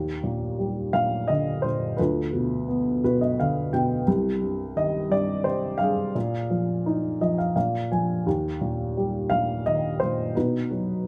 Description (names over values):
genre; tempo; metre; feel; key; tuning
acoustic folk-pop ballad; 86 BPM; 3/4; straight; Eb major; A4 = 440 Hz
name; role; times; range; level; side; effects
dark upright piano; solo; 0.0-11.1 s; C2 to Ab5; -25 LUFS; equal; none
room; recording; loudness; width
moderate studio reverb, RT60 0.6 s; none; -25 LUFS; mono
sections
0.0-11.1 A section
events
upright piano fill 2.7-4.1, 6.9-8.3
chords
0.0 Ebmaj7; 2.0 Dm6; 4.1 Cm; 6.2 Bb7sus4; 7.6 Bb5; 8.3 Eb; 10.4 B